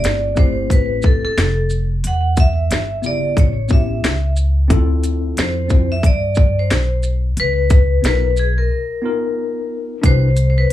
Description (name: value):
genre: hip hop, jazz-hop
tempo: 90 BPM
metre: 4/4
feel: swing 57% on 16ths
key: unclear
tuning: A4 = 440 Hz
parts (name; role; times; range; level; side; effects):
- vibraphone with hard mallets; melody; 0.0-10.7 s; Ab4 to F#5; -21 LUFS; left 1 dB; slapback echo
- tine electric piano; accompaniment; 0.0-10.3 s; Db3 to C5; -23 LUFS; left 3 dB; overdrive, fast stereo tremolo
- upright bass; bass; 0.0-10.7 s; F1 to G2; -17 LUFS; equal; none
- drum and bass drum kit; drums; 0.0-10.7 s; hi-hat, kick drum, shaker, snare drum; -14 LUFS; equal; none
room: little or no reverb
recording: small room ambience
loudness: -14 LUFS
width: side -13 dB against mid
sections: 0.0-10.0 A section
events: break 8.7-10.0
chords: 0.0 Fmaj9; 2.0 Em; 3.4 A7; 4.7 Dm7; 7.4 Db13; 10.0 Cmaj7